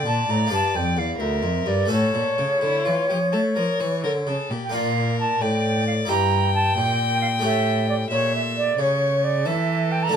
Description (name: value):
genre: classical, baroque-style sonata movement with continuo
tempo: 87 BPM (dotted quarters)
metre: 12/8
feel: uneven beats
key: unclear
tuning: A4 = 440 Hz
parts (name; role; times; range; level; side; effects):
- rich violin; melody; 0.0-10.2 s; E4 to G5; -28 LUFS; left 6 dB; none
- silver concert flute; second line; 0.0-10.2 s; C#5 to Bb5; -23 LUFS; right 2 dB; none
- harpsichord; accompaniment; 0.0-10.2 s; D2 to D5; -27 LUFS; left 3 dB; none
- dark cello; bass; 0.0-10.2 s; D2 to A3; -25 LUFS; equal; none
room: light reverb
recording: none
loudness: -19 LUFS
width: side -8 dB against mid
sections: 0.0-4.7 A section; 4.7-10.2 B section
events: none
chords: 0.0 D5; 0.5 Gm; 1.9 A; 4.7 Bb; 6.1 Edim/G; 7.4 A7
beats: 0.51 1.19 | 1.90 2.62 3.33 4.03 | 4.73 5.42 6.09 6.76 | 7.43 8.11 8.78 9.45 | 10.13